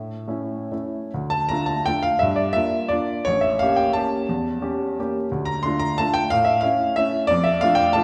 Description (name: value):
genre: classical, piano waltz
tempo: 135-194 BPM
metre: 3/4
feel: rubato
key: D minor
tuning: A4 = 440 Hz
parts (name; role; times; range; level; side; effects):
- warm baby grand piano; solo; 0.0-8.0 s; A1 to C6; -22 LUFS; equal; none
room: wet recital hall reverb, RT60 1.6 s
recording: heard from further back in the room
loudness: -22 LUFS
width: mono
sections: 0.0-1.1 A section; 1.1-8.0 B section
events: none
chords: 0.0 A; 1.1 Dm; 2.2 Gm7; 3.3 A7b9; 5.3 Dm; 6.3 A; 7.3 Dm/F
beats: 0.28 0.72 | 1.14 1.50 1.86 | 2.21 2.55 2.90 | 3.26 3.61 3.95 | 4.28 4.62 4.98 | 5.31 5.64 5.98 | 6.31 6.63 6.97 | 7.30 7.62 7.96